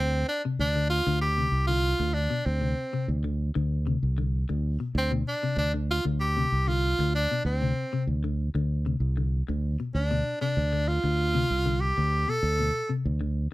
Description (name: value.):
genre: afrobeat.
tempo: 96 BPM.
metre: 4/4.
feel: straight.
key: D dorian.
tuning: A4 = 440 Hz.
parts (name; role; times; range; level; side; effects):
edgy tenor saxophone; melody; 0.0-12.9 s; C4 to A4; -28 LUFS; right 1 dB; none.
fingered electric bass; bass; 0.0-13.5 s; C2 to D2; -26 LUFS; equal; none.
semi-hollow electric guitar; arpeggios; 0.5-13.4 s; B2 to D3; -32 LUFS; left 4 dB; none.
room: light reverb.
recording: none.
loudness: -24 LUFS.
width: side -18 dB against mid.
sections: 0.0-13.5 A section.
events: none.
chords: 0.0 D7(no3).